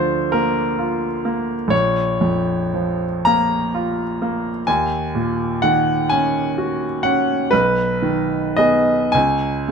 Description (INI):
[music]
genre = classical, romantic nocturne for solo piano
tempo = 35-46 BPM (dotted quarters)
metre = 12/8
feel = rubato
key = unclear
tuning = A4 = 440 Hz
[part]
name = bright grand piano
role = solo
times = 0.0-9.7 s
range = A#1 to A#5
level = -17 LUFS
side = equal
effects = none
[sound]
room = light reverb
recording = none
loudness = -17 LUFS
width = side -6 dB against mid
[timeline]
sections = 0.0-9.7 A section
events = none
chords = 0.0 Bb/D; 1.7 A#m; 4.7 D#m7; 7.5 G#m/B; 9.1 C#5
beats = 0.34 | 1.72 3.26 4.67 6.10 | 7.52 9.13